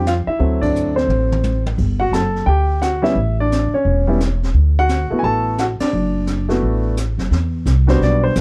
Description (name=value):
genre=jazz piano trio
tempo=174 BPM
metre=4/4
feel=swing 64% on 8ths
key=D major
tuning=A4 = 440 Hz
part: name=clear baby grand piano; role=melody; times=0.0-8.3 s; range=F#3 to A5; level=-21 LUFS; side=equal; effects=none
part: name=upright bass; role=bass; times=0.0-8.4 s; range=E1 to F2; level=-20 LUFS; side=equal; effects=none
part: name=jazz brush drum kit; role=drums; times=0.1-8.4 s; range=brushed snare drum, hi-hat, kick drum, ride cymbal, snare drum, toms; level=-28 LUFS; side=equal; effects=none
room=small room ambience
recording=none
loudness=-17 LUFS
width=mono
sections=0.0-7.3 A section; 7.3-8.4 B section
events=band accent 0.6, 5.8; drum fill 1.1-1.8; grand piano solo 7.3-8.4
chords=0.4 D7; 1.8 Gmaj7sus2; 3.2 A; 4.5 D6; 7.3 Em7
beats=0.06 | 0.40 0.75 1.09 1.44 | 1.78 2.13 2.48 2.82 | 3.17 3.51 3.86 4.20 | 4.55 4.89 5.24 5.58 | 5.93 6.28 6.62 6.96 | 7.31 7.66 8.00 8.35